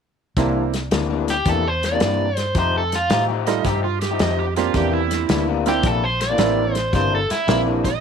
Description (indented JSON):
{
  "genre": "electric blues shuffle",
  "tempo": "110 BPM",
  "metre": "4/4",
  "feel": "swing 67% on 8ths",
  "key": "C mixolydian",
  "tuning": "A4 = 440 Hz",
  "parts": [
    { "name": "bright upright piano", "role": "accompaniment", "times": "0.4-7.8 s", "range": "G3 to G4", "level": "-24 LUFS", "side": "right 12 dB", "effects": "none" },
    { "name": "electric guitar through a small old amp", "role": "riff", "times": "0.4-7.9 s", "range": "C3 to G4", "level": "-24 LUFS", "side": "left 11 dB", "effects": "lush chorus" },
    { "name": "vintage muted fingered electric bass", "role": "bass", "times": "0.4-8.0 s", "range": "G1 to A2", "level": "-24 LUFS", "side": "equal", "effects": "none" },
    { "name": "warm soul drum kit", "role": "drums", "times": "0.4-7.9 s", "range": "hi-hat, kick drum, snare drum", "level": "-24 LUFS", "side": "left 1 dB", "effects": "none" },
    { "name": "biting overdriven guitar", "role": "melody", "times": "1.3-7.6 s", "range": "E4 to D5", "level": "-22 LUFS", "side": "right 2 dB", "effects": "none" },
    { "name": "overdriven slide guitar", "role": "second line", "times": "3.5-8.0 s", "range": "E4 to Eb5", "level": "-25 LUFS", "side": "right 12 dB", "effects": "none" }
  ],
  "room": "light reverb, small room ambience",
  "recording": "1960s-style stereo with parts hard left and right",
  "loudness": "-18 LUFS",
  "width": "side -7 dB against mid",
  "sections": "0.4-8.0 A section",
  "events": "none",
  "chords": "0.4 C9; 2.6 F9; 4.7 C9",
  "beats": "| 0.37 0.92 1.47 2.01 | 2.56 3.10 3.65 4.20 | 4.74 5.29 5.84 6.38 | 6.93 7.48"
}